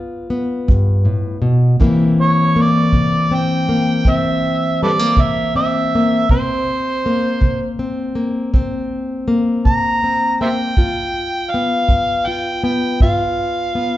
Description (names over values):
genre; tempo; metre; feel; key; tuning
acoustic country blues, solo or duo; 54 BPM (dotted quarters); 12/8; straight; unclear; A4 = 439 Hz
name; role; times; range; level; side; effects
fingerpicked plugged-in steel-string acoustic guitar; accompaniment; 0.0-14.0 s; G2 to F4; -17 LUFS; left 2 dB; none
kick drum; drums; 0.7-13.2 s; none; -16 LUFS; equal; none
overdriven harmonica; melody; 2.2-14.0 s; A4 to Bb5; -18 LUFS; right 2 dB; none
room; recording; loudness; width
wet recital hall reverb, RT60 1.5 s; recorded in a church or concert hall, nothing above 7.8 kHz; -14 LUFS; side -14 dB against mid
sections
0.0-14.0 A section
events
none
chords
0.0 G7; 1.8 C7; 10.8 G7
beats
0.70 | 1.82 2.94 4.06 5.18 | 6.30 7.42 8.53 9.65 | 10.77 11.89 13.01